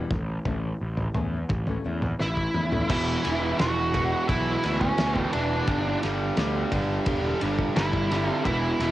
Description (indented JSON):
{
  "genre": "quiet-loud alternative rock",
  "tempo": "86 BPM",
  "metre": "4/4",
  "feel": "straight",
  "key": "E dorian",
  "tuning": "A4 = 440 Hz",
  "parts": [
    { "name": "picked steel-string acoustic guitar", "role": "arpeggios", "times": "0.0-2.9 s", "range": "E3 to E4", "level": "-33 LUFS", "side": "left 5 dB", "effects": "cassette tape" },
    { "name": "fuzz picked electric bass", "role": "bass", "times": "0.0-8.9 s", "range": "E1 to E2", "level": "-29 LUFS", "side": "equal", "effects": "overdrive" },
    { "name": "loose indie drum kit", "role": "drums", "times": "0.1-8.9 s", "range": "crash cymbal, kick drum, ride cymbal, snare drum, toms", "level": "-30 LUFS", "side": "equal", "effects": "cassette tape" },
    { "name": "octave-fuzz lead guitar", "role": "melody", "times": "2.2-8.9 s", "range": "C#4 to F#5", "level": "-27 LUFS", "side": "equal", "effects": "distortion, cassette tape" },
    { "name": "biting overdriven guitar", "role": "riff", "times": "2.9-8.9 s", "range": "E2 to G3", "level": "-29 LUFS", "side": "right 6 dB", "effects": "cassette tape" },
    { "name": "overdriven semi-hollow guitar", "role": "riff", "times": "2.9-8.9 s", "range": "E2 to G3", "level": "-32 LUFS", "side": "left 6 dB", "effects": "cassette tape" }
  ],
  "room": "little or no reverb",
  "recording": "home recording on cassette",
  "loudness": "-23 LUFS",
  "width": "side -14 dB against mid",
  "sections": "0.0-2.9 A section; 2.9-8.9 B section",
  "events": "drum fill 2.2-2.9",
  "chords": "0.1 A; 2.9 E5; 5.7 G5"
}